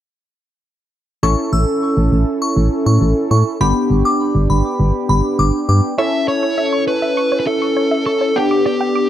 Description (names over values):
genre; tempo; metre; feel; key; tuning
pop; 101 BPM; 4/4; straight; unclear; A4 = 442 Hz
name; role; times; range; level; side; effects
glassy synth bell; second line; 1.2-5.8 s; B5 to E6; -22 LUFS; left 2 dB; chorus, phaser, analog delay
funky polysynth comp; accompaniment; 1.2-9.1 s; B3 to A4; -18 LUFS; equal; chorus
solid FM bass; bass; 1.2-5.8 s; G1 to A2; -14 LUFS; equal; none
dark smooth lead guitar; melody; 6.0-9.1 s; G4 to E5; -18 LUFS; equal; overdrive
wide unison pluck; arpeggios; 6.0-9.1 s; C#5 to D6; -23 LUFS; right 1 dB; none
room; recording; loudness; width
light reverb; dark, warm production; -14 LUFS; side -11 dB against mid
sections
1.2-6.0 A section; 6.0-9.1 B section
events
none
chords
1.2 A; 3.6 G; 6.0 A; 8.4 G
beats
| 1.23 1.82 2.42 3.01 | 3.61 4.20 4.79 5.39 | 5.98 6.58 7.17 7.77 | 8.36 8.95